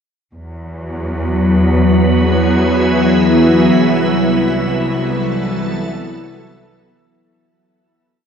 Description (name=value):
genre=ambient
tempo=free time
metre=none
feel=none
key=E major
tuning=A4 = 441 Hz
part: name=soft additive organ-like pad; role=sustained chords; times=1.0-7.2 s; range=F#3 to A4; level=-13 LUFS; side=equal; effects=ensemble chorus, built-in reverb
part: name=rich studio cello section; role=bass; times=0.3-7.2 s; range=C2 to E2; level=-19 LUFS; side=equal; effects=none
part: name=bowed-like drone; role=drone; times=1.7-7.3 s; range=E3 to B3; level=-24 LUFS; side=right 2 dB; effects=built-in reverb
room=wet shimmer reverb, RT60 8.6 s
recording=dark, warm production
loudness=-12 LUFS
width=side -7 dB against mid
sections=0.3-7.2 A section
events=fade-in on synth drone 0.3-7.2; fade-out 3.8-7.2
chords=0.3 E; 3.8 Cmaj7